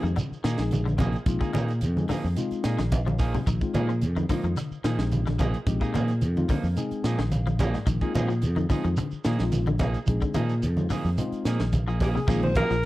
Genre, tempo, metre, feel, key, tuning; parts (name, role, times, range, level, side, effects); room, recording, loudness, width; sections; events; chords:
afrobeat; 109 BPM; 4/4; straight; Bb mixolydian; A4 = 440 Hz
tine electric piano; accompaniment; 0.0-12.5 s; Ab3 to Ab5; -32 LUFS; left 4 dB; lush chorus
clean electric guitar; arpeggios; 0.0-12.9 s; Ab2 to F3; -33 LUFS; left 5 dB; analog chorus
electric guitar at the edge of break-up; stabs; 0.0-12.7 s; F3 to Ab4; -34 LUFS; right 4 dB; spring reverb
fingered electric bass; bass; 0.0-12.9 s; Bb1 to Bb2; -26 LUFS; equal
tight funk drum kit; drums; 0.0-12.8 s; crash cymbal, hi-hat, kick drum, snare drum; -28 LUFS; equal
shekere; percussion; 0.0-12.8 s; -36 LUFS; right 3 dB
congas; percussion; 0.2-12.7 s; -30 LUFS; right 1 dB
breathy alto saxophone; melody; 12.0-12.9 s; G4 to C5; -27 LUFS; equal
small room reverb; dry, close 1970s-style studio recording; -23 LUFS; side -17 dB against mid
0.0-12.3 A section
tine electric piano fill 2.4-3.5, 6.8-7.9; drum fill 2.9-3.5
0.0 Bb7sus4